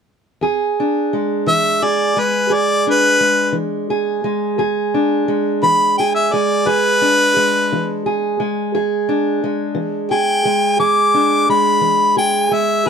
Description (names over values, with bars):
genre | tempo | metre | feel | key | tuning
acoustic country blues, solo or duo | 58 BPM (dotted quarters) | 12/8 | straight | E mixolydian | A4 = 439 Hz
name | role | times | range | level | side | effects
fingerpicked steel-string acoustic guitar | accompaniment | 0.4-12.9 s | E2 to G#4 | -17 LUFS | right 1 dB | none
warm harmonica | melody | 1.5-12.9 s | B4 to D6 | -14 LUFS | left 1 dB | none
room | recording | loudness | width
light reverb | close, detailed microphones | -14 LUFS | side -6 dB against mid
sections
0.4-12.9 A section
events
none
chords
0.4 E7